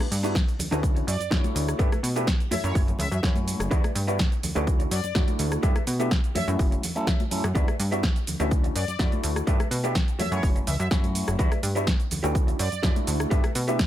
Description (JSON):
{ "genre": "filtered disco house", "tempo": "125 BPM", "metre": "4/4", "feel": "straight", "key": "E dorian", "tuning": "A4 = 444 Hz", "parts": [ { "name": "mellow electric guitar", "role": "riff", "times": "0.0-13.8 s", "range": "D4 to G5", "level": "-33 LUFS", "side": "equal", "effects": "sidechain pumping" }, { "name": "punchy analog drum machine", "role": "drums", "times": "0.0-13.9 s", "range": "cabasa, hi-hat, rim click, snare drum", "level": "-30 LUFS", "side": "equal", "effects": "overdrive, sidechain pumping on hats, sidechain pumping on cymbals, sidechain pumping on perc" }, { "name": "congas and tube shaker", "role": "percussion", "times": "0.0-13.9 s", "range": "none", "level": "-36 LUFS", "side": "left 1 dB", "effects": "sidechain pumping on perc" }, { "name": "plucky analog bass", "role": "bass", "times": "0.1-13.9 s", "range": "F#1 to B2", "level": "-28 LUFS", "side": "equal", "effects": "sidechain pumping" }, { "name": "overdriven tine electric piano", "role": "accompaniment", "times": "0.2-13.8 s", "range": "F#3 to C#5", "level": "-32 LUFS", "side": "equal", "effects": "phaser, sidechain pumping" }, { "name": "electronic kick drum", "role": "drums", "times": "0.4-13.9 s", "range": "none", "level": "-24 LUFS", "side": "equal", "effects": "overdrive" }, { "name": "analog synth brass", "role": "melody", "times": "1.1-13.0 s", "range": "C#5 to E5", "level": "-34 LUFS", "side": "equal", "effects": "chorus, sidechain pumping" } ], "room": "little or no reverb", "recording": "none", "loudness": "-22 LUFS", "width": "side -12 dB against mid", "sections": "0.0-13.9 A section", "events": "clean electric guitar fill 10.7-11.4", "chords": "0.0 Em7; 0.8 Dmaj9; 1.8 G69; 2.5 F#m7; 3.7 Em7; 4.7 Dmaj9; 5.6 G69; 6.4 F#m7; 7.6 Em7; 8.5 Dmaj9; 9.5 G69; 10.2 F#m7; 11.4 Em7; 12.4 Dmaj9; 13.3 G69", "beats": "0.35 0.83 1.31 | 1.79 2.27 2.75 3.23 | 3.71 4.20 4.67 5.16 | 5.63 6.12 6.59 7.08 | 7.55 8.04 8.52 8.99 | 9.47 9.96 10.44 10.91 | 11.39 11.88 12.36 12.84 | 13.31 13.79" }